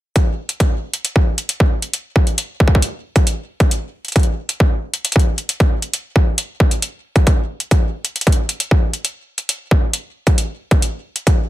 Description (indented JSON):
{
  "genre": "IDM",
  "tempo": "135 BPM",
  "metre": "4/4",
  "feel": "straight",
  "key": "none",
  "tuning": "none",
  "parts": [
    { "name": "electronic hi-hat", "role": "drums", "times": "0.2-11.4 s", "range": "none", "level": "-20 LUFS", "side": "equal", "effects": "none" },
    { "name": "electronic kick drum", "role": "drums", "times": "0.2-11.4 s", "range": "none", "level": "-13 LUFS", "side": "equal", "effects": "distortion, overdrive" }
  ],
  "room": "little or no reverb",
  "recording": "dense, heavily limited modern master",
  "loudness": "-15 LUFS",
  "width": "side -15 dB against mid",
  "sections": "0.2-11.5 A section",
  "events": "none",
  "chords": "none",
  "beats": "| 0.16 0.60 1.05 1.49 | 1.94 2.38 2.82 3.27 | 3.71 4.16 4.60 5.05 | 5.49 5.93 6.38 6.82 | 7.27 7.71 8.16 8.60 | 9.05 9.49 9.94 10.38 | 10.82 11.27"
}